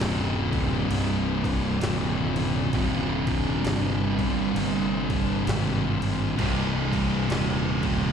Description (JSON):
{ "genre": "stoner and doom metal", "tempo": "66 BPM", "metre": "4/4", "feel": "swing 59% on 8ths", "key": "C minor", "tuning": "A4 = 439 Hz", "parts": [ { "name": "thick fuzz guitar", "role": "riff", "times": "0.0-8.1 s", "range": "C2 to C3", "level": "-28 LUFS", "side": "left 10 dB", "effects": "distortion" }, { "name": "thick fuzz guitar", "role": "riff", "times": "0.0-8.1 s", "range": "C2 to C3", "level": "-27 LUFS", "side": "right 8 dB", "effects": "distortion, slapback echo" }, { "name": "fuzz fingered electric bass", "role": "bass", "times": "0.0-8.1 s", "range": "C1 to Ab1", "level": "-28 LUFS", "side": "equal", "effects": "overdrive" }, { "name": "jungle sampler-style drum kit", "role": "drums", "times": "0.0-8.0 s", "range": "crash cymbal, kick drum, snare drum", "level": "-33 LUFS", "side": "equal", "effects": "none" }, { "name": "high-gain distorted guitar", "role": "riff", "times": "6.4-8.1 s", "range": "C2 to C3", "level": "-32 LUFS", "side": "equal", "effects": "distortion" } ], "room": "digital ambience", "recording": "live gig heard through the venue's PA, recital hall reverb", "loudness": "-23 LUFS", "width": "side -7 dB against mid", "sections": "0.0-8.1 A section", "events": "none", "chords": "0.0 Cm" }